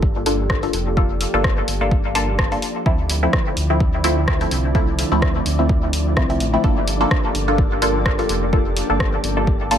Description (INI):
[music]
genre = dub techno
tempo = 127 BPM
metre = 4/4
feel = swing 56% on 16ths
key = G minor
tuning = A4 = 440 Hz
[part]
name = warbly tape-like pad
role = sustained chords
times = 0.0-9.8 s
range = D3 to A4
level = -27 LUFS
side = right 1 dB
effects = chorus, built-in reverb, sidechain pumping
[part]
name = filtered dub chord stab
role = stabs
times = 0.0-9.8 s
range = F3 to A4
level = -21 LUFS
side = left 1 dB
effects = chorus, phaser, sidechain pumping, dub echo
[part]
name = round analog bass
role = bass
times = 0.0-9.8 s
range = F1 to D2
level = -23 LUFS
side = equal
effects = sidechain pumping
[part]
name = electronic kick drum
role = drums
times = 0.0-9.6 s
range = none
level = -20 LUFS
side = equal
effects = overdrive
[part]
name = flickering grainy texture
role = texture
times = 0.1-9.8 s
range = D4 to D5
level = -32 LUFS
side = right 1 dB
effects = built-in reverb, sidechain pumping
[part]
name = punchy analog drum machine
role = drums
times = 0.3-9.8 s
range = hi-hat, rim click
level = -24 LUFS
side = equal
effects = none
[sound]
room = light reverb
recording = echo-heavy mix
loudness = -16 LUFS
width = side -9 dB against mid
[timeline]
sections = 0.0-9.8 A section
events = none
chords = 0.0 Gm9; 2.9 Dm9; 6.6 Gm9